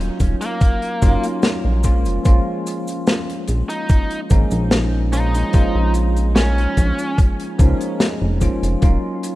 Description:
vaporwave; 73 BPM; 4/4; straight; A4 = 440 Hz
bell-like tine electric piano; accompaniment; 0.0-9.4 s; F3 to F4; -23 LUFS; equal; fast stereo tremolo, analog chorus, analog delay
chorused synth bass; bass; 0.0-9.0 s; Eb1 to Db2; -18 LUFS; equal
natural country drum kit; drums; 0.0-9.4 s; cabasa, hi-hat, snare drum; -22 LUFS; left 1 dB
electronic kick drum; drums; 0.2-9.0 s; -15 LUFS; equal
biting lead guitar; melody; 0.4-7.2 s; Bb3 to Eb4; -27 LUFS; equal; overdrive, tape echo
small room reverb; rough home demo mix; -15 LUFS; side -17 dB against mid
0.0-9.4 A section
0.0 Ebm9; 1.8 Bbm7; 8.8 Ebm9

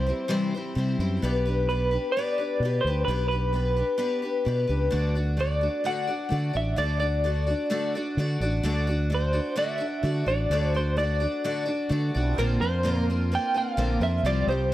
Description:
rock; 129 BPM; 4/4; straight; A4 = 439 Hz
electric guitar through a small old amp; melody; 0.0-14.7 s; Bb4 to G5; -28 LUFS; right 1 dB; tremolo, analog delay
picked twelve-string acoustic guitar; accompaniment; 0.0-14.7 s; Bb2 to D5; -28 LUFS; left 2 dB
fingered electric bass; bass; 0.0-14.7 s; A1 to D3; -26 LUFS; equal
tonewheel organ; sustained chords; 12.1-14.7 s; G3 to C5; -38 LUFS; right 4 dB; slow rotary speaker, overdrive, chorus vibrato
light reverb, digital ambience; -23 LUFS; side -14 dB against mid
0.0-12.4 A section; 12.4-14.7 B section
0.0 C; 1.2 G/B; 4.9 D; 12.4 Bbadd9

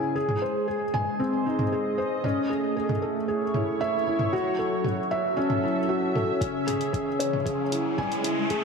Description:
piano and strings electronica; 115 BPM; 4/4; straight; C# harmonic minor; A4 = 440 Hz
lush unison pad; sustained chords; 0.0-8.6 s; C#3 to E5; -29 LUFS; equal; chorus
felt-muted upright piano; riff; 0.0-8.6 s; B#3 to G#5; -26 LUFS; equal; digital delay
deep house drum kit; drums; 0.3-8.6 s; hi-hat, toms; -31 LUFS; equal
electronic kick drum; drums; 6.4-8.6 s; -32 LUFS; equal
riser; sound effects; 7.0-8.6 s; -33 LUFS; left 1 dB
wet lush hall reverb, RT60 1.9 s, digital ambience; dark, warm production, high-pass filter; -24 LUFS; side -5 dB against mid
0.0-8.6 A section
build-up 0.0-8.6; filter sweep 0.0-8.6; riser 7.0-8.6
0.2 G#; 2.2 Amaj7; 4.3 F#m7; 6.4 C#m

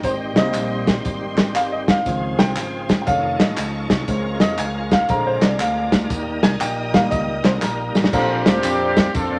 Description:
uptempo gospel; 119 BPM; 4/4; swing 65% on 8ths; A4 = 445 Hz
clear grand piano; accompaniment; 0.0-8.9 s; Bb2 to Ab5; -25 LUFS; equal
bright tonewheel organ; sustained chords; 0.0-9.4 s; Db3 to C5; -31 LUFS; equal; slow rotary speaker, overdrive, chorus vibrato
dark studio string section; sustained chords; 0.0-8.1 s; C5 to Eb6; -36 LUFS; equal
fingered electric bass; bass; 0.0-9.4 s; F1 to F2; -30 LUFS; equal
warm soul drum kit; drums; 0.0-9.3 s; crash cymbal, hi-hat, kick drum, ride cymbal, snare drum; -21 LUFS; equal
tambourine and handclaps; percussion; 0.0-9.3 s; -35 LUFS; equal
mellow horn section; melody; 8.1-9.4 s; C4 to A4; -23 LUFS; equal
moderate studio reverb, RT60 0.8 s; -19 LUFS; mono
0.0-8.1 A section; 8.1-9.4 B section
grand piano solo 0.0-8.1; drum fill 7.6-8.1
0.0 Abmaj7; 2.1 Dbmaj7; 3.1 F7b13; 4.1 Bbm7/Db; 5.1 Bb7; 6.1 Eb; 8.1 Bbmaj9

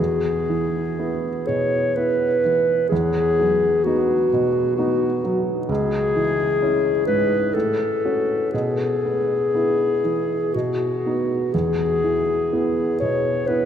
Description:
classical, romantic duo for clarinet and grand piano; 59-66 BPM; 3/4; rubato; E major; A4 = 440 Hz
warm clarinet; melody; 0.0-13.7 s; F#4 to C#5; -20 LUFS; left 2 dB
warm baby grand piano; accompaniment; 0.0-13.7 s; C#2 to F#4; -23 LUFS; right 3 dB
wet cathedral reverb, RT60 5.9 s; in a vast, echoing space; -18 LUFS; side -9 dB against mid
0.0-13.7 A section
0.0 E; 2.9 B/E; 5.7 C#m; 7.5 F#m/A; 8.5 E/B; 10.5 B; 11.5 E

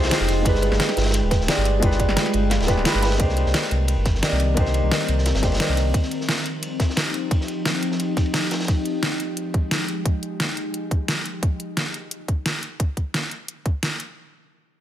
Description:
liquid drum and bass; 175 BPM; 4/4; swing 53% on 16ths; C minor; A4 = 440 Hz
felt-muted upright piano; accompaniment; 0.0-6.0 s; Ab3 to D5; -25 LUFS; equal; low-pass filter, tape echo
glassy FM pad; sustained chords; 0.0-11.4 s; Eb3 to G5; -28 LUFS; left 1 dB; ensemble chorus, built-in reverb
kalimba; arpeggios; 0.0-3.2 s; G4 to B5; -31 LUFS; right 6 dB; tape echo
sub bass with octave; bass; 0.0-5.9 s; D1 to C2; -22 LUFS; equal
crunchy breakbeat drum kit; drums; 0.0-8.7 s; hi-hat, ride cymbal, snare drum; -30 LUFS; equal; high-pass filter on cymbals, high-pass filter on hats, high-pass filter on snare, high-pass filter on room
pop drum kit; drums; 0.0-14.1 s; hi-hat, snare drum; -24 LUFS; equal; overdrive
electronic kick drum; drums; 0.5-13.7 s; -21 LUFS; equal
light reverb; -20 LUFS; side -11 dB against mid
0.0-3.2 A section; 3.2-14.2 B section
drop 0.0-3.2; filter sweep on felt piano 3.2-5.9
0.5 G7b9; 3.2 Cm7; 5.9 Eb69; 8.7 Fm9; 11.4 N.C.

